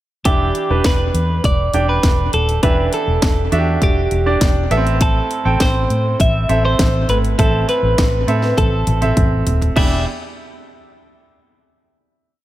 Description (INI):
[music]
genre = piano-driven pop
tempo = 101 BPM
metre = 4/4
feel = straight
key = E minor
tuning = A4 = 438 Hz
[part]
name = twelve-string electric guitar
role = melody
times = 0.3-10.0 s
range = E4 to E5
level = -20 LUFS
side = right 1 dB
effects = analog delay
[part]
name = bright baby grand piano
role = accompaniment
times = 0.3-10.0 s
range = E2 to G5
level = -21 LUFS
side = right 3 dB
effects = analog delay
[part]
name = vintage muted fingered electric bass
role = bass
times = 0.3-10.0 s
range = D#1 to A2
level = -18 LUFS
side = left 1 dB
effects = none
[part]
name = house drum kit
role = drums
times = 0.3-9.9 s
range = crash cymbal, hi-hat, kick drum, snare drum, toms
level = -18 LUFS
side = equal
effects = none
[sound]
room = light reverb, digital ambience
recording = echo-heavy mix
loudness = -14 LUFS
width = side -14 dB against mid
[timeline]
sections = 0.3-9.8 verse; 9.8-12.1 final chord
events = drum fill 8.6-9.8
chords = 0.3 Em7; 4.7 Am; 9.8 Em7